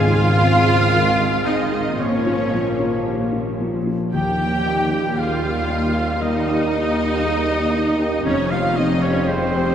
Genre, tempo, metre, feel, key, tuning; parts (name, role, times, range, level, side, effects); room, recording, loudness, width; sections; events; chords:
cinematic; 58 BPM; 4/4; rubato; A4 = 440 Hz
rich symphonic violin section; melody; 0.0-9.7 s; C5 to G5; -30 LUFS; left 4 dB
clear oboe; second line; 0.0-9.7 s; C5 to G5; -28 LUFS; right 2 dB
clear symphonic violin section; second line; 0.0-9.7 s; C5 to G5; -30 LUFS; left 1 dB
mellow hollow silver concert flute; second line; 0.0-9.7 s; C5 to G5; -28 LUFS; equal
dark grand piano; accompaniment; 0.0-9.7 s; Eb2 to Bb4; -24 LUFS; left 1 dB
rich symphonic viola section; accompaniment; 0.0-9.7 s; C4 to G4; -23 LUFS; right 1 dB
warm French horn section; sustained chords; 0.0-9.7 s; F3 to C4; -28 LUFS; left 2 dB
concert harp; arpeggios; 0.0-9.7 s; Ab2 to Eb4; -29 LUFS; left 4 dB
clear symphonic double bass section; bass; 0.0-9.7 s; F1 to Eb2; -27 LUFS; right 3 dB
rich symphonic cello section; bass; 0.0-9.7 s; Eb2 to Bb2; -26 LUFS; right 2 dB
timpani; percussion; 0.0-1.4 s; Ab2; -27 LUFS; right 1 dB
wet cathedral reverb, RT60 5.2 s; -17 LUFS; side -9 dB against mid
0.0-9.7 A section
0.0 Ab; 2.0 Bbm; 4.1 Eb; 8.3 Fsus2